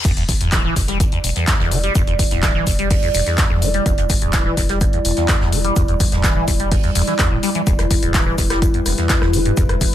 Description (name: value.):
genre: acid house.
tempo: 126 BPM.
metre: 4/4.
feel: straight.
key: E minor.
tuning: A4 = 445 Hz.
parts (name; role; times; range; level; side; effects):
dark analog pad; sustained chords; 1.2-9.9 s; G3 to D5; -23 LUFS; right 1 dB; chorus, phaser, sidechain pumping.
liquid acid bass; riff; 0.0-9.9 s; E1 to G3; -20 LUFS; equal; phaser, overdrive, wide subtle chorus, sidechain pumping.
warm sub bass; bass; 0.0-9.9 s; D1 to E1; -23 LUFS; equal; sidechain pumping.
electronic kick drum; drums; 0.0-9.9 s; none; -18 LUFS; equal; none.
punchy analog drum machine; drums; 0.0-9.9 s; crash cymbal, handclaps, hi-hat, rim click; -23 LUFS; left 1 dB; none.
jazz brush drum kit; drums; 0.1-9.9 s; hi-hat, shaker, snare drum; -31 LUFS; equal; high-pass filter on hats, high-pass filter on snare, high-pass filter on perc, high-pass filter on room.
room: little or no reverb.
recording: none.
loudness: -15 LUFS.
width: side -12 dB against mid.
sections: 0.0-9.9 A section.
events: none.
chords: 0.0 Em7.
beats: | 0.05 0.53 1.00 1.48 | 1.95 2.43 2.91 3.38 | 3.86 4.33 4.81 5.29 | 5.76 6.24 6.72 7.19 | 7.67 8.14 8.62 9.10 | 9.57.